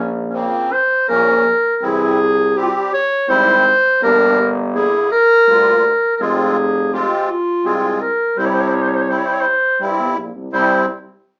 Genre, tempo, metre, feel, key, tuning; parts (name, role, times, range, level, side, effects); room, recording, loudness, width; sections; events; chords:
klezmer; 82 BPM; 3/4; straight; C phrygian dominant; A4 = 440 Hz
mellow clarinet; melody; 0.0-10.9 s; C4 to Db5; -17 LUFS; equal
warm tuba; bass; 0.0-10.9 s; F1 to G2; -24 LUFS; equal
musette accordion; accompaniment; 0.3-10.9 s; Db3 to G4; -22 LUFS; equal
wet small room reverb, RT60 0.6 s; band playing live in one room, small speaker sound; -16 LUFS; mono
0.0-10.5 A section
speeding up 0.0-11.4
0.0 Bbm; 1.8 C; 4.0 Gm; 6.2 Fm; 8.4 C